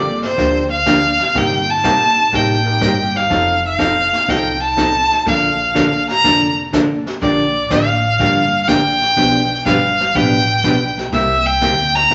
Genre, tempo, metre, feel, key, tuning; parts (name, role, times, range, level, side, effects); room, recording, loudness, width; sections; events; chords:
country, western swing; 123 BPM; 4/4; swing 68% on 8ths; Bb major; A4 = 440 Hz
clear fiddle; melody; 0.0-12.1 s; C5 to Bb5; -17 LUFS; equal
bright upright piano; accompaniment; 0.0-3.3 s; Bb3 to Bb4; -33 LUFS; equal
upright bass; bass; 0.0-12.1 s; F1 to E2; -27 LUFS; equal
jazz brush drum kit; drums; 0.2-12.1 s; brushed snare drum, hi-hat, kick drum, snare drum; -28 LUFS; equal
hollow-body jazz guitar; accompaniment; 0.4-12.1 s; B2 to B4; -21 LUFS; equal
wet large studio reverb, RT60 1.2 s; nothing above 7.9 kHz; -15 LUFS; mono
0.0-7.2 A section; 7.2-12.1 B section
fiddle solo 0.0-7.2
0.0 Gm11; 1.4 Cm7/G; 3.3 F7; 5.3 Bbmaj7; 7.2 Bb6; 9.2 G7; 11.1 C7